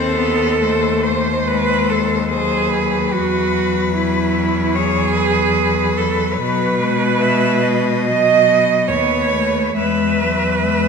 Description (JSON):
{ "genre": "classical, lyrical piece for cello ensemble", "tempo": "72 BPM", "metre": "4/4", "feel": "rubato", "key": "E major", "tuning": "A4 = 441 Hz", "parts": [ { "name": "rich cello", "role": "melody", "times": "0.0-10.9 s", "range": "B4 to E5", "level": "-22 LUFS", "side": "left 8 dB", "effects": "none" }, { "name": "warm cello", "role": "second line", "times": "0.0-10.9 s", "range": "E4 to D#5", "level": "-18 LUFS", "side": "right 6 dB", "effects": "none" }, { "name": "rich cello", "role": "accompaniment", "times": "0.0-10.9 s", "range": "F#3 to B#3", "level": "-21 LUFS", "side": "left 5 dB", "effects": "none" }, { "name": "rich cello", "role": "bass", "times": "0.0-10.9 s", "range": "D#2 to B2", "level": "-21 LUFS", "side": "equal", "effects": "none" } ], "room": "wet concert hall reverb, RT60 1.7 s", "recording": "minimal, uncompressed stereo recording", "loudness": "-14 LUFS", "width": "side -5 dB against mid", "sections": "0.0-10.9 A section", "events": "none", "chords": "0.0 D#dim7; 3.1 E; 6.4 B; 9.8 E", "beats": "0.61 1.45 2.29 | 3.12 3.94 4.75 5.57 | 6.39 7.21 8.06 8.89 | 9.76 10.62" }